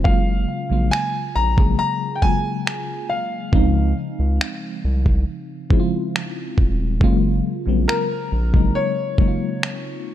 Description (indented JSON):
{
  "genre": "contemporary R&B",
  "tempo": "69 BPM",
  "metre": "4/4",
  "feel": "straight",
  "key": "Gb lydian",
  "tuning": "A4 = 441 Hz",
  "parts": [
    { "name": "clear concert grand piano", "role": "melody", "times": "0.0-10.1 s", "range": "Bb4 to Bb5", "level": "-25 LUFS", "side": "left 2 dB", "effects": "ping-pong delay" },
    { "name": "FM electric piano with auto-pan", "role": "accompaniment", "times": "0.0-10.1 s", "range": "Db3 to Ab4", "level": "-23 LUFS", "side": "left 1 dB", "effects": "phaser" },
    { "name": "round analog bass", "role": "bass", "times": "0.0-8.7 s", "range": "Eb1 to Db2", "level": "-20 LUFS", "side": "equal", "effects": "none" },
    { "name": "dusty soul sampler-style drum kit", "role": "drums", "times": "0.1-9.8 s", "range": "finger snaps, kick drum", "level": "-19 LUFS", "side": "equal", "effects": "none" }
  ],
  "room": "little or no reverb",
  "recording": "dark, warm production",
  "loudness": "-18 LUFS",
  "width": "side -12 dB against mid",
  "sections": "0.0-10.1 A section",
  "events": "none",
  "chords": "0.1 Gbmaj9; 3.5 Dbmaj9; 7.0 Gbmaj9"
}